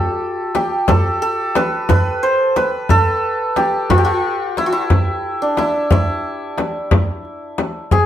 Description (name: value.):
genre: Persian modal ensemble.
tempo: 60 BPM (dotted quarters).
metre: 6/8.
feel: straight.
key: unclear.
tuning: A4 = 441 Hz.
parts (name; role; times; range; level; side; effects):
santur; melody; 0.0-8.1 s; D4 to C5; -17 LUFS; equal; none.
tombak; percussion; 0.0-8.1 s; none; -17 LUFS; right 1 dB; none.
frame drum; percussion; 0.5-8.1 s; none; -19 LUFS; left 3 dB; none.
room: moderate studio reverb, RT60 0.7 s.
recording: band playing live in one room.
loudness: -15 LUFS.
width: side -11 dB against mid.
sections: 0.0-7.9 A section.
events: none.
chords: none.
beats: 0.88 | 1.89 2.89 | 3.90 4.90 | 5.91 6.92 | 7.92.